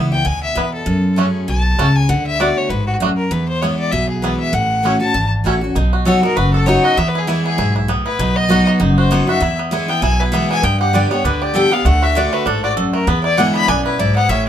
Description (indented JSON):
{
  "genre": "bluegrass",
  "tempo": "197 BPM",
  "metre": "4/4",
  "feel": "swing 56% on 8ths",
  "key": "unclear",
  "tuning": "A4 = 440 Hz",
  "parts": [
    { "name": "bluegrass banjo", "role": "melody", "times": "0.0-14.5 s", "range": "A3 to A4", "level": "-21 LUFS", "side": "right 3 dB", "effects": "none" },
    { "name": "picked steel-string acoustic guitar", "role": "accompaniment", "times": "0.0-14.5 s", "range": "E2 to G#4", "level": "-18 LUFS", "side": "equal", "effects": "none" },
    { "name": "upright bass", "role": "bass", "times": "0.0-14.5 s", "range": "F#1 to G2", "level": "-19 LUFS", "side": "equal", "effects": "none" },
    { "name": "rich fiddle", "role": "melody", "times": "0.1-14.5 s", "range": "E4 to B5", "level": "-19 LUFS", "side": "left 3 dB", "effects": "none" }
  ],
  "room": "moderate small room reverb, RT60 0.5 s",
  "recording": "minimal, uncompressed stereo recording",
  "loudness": "-13 LUFS",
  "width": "side -10 dB against mid",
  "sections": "0.0-5.8 A section; 5.8-14.5 B section",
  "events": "none",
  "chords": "0.0 E; 0.9 F#madd9; 2.1 D6; 3.3 E; 4.5 A6; 5.8 B; 7.0 E; 8.2 B; 9.4 E; 10.6 G; 11.9 D; 13.1 E7"
}